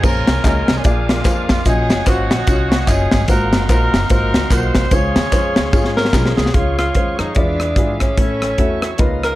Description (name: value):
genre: uptempo gospel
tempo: 148 BPM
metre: 4/4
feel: swing 60% on 8ths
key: Db major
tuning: A4 = 439 Hz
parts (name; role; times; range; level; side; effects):
- warm horn section; melody; 0.0-6.1 s; Ab3 to Db5; -21 LUFS; equal; none
- warm upright piano; accompaniment; 0.0-9.4 s; Ab2 to Gb5; -22 LUFS; left 2 dB; none
- bright tonewheel organ; sustained chords; 0.0-9.4 s; Bb3 to Eb6; -27 LUFS; right 2 dB; slow rotary speaker, overdrive
- upright bass; bass; 0.0-9.3 s; Gb1 to Ab2; -21 LUFS; equal; none
- crisp fusion drum kit; drums; 0.0-9.3 s; crash cymbal, hi-hat, kick drum, rim click, snare drum; -16 LUFS; equal; none
- tambourine and handclaps; percussion; 0.0-6.5 s; none; -32 LUFS; left 1 dB; none
- breathy tenor saxophone; melody; 6.0-9.4 s; Db4 to Bb4; -21 LUFS; equal; none
room: little or no reverb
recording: dark, warm production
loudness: -13 LUFS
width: side -16 dB against mid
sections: 0.0-6.5 A section; 6.5-9.4 B section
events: drum fill 5.7-6.5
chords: 0.0 Bbm9; 0.8 Bb7; 1.7 Ebm9; 3.3 Ab13; 4.9 Dbmaj7; 6.5 Db; 7.4 E7b9; 8.2 A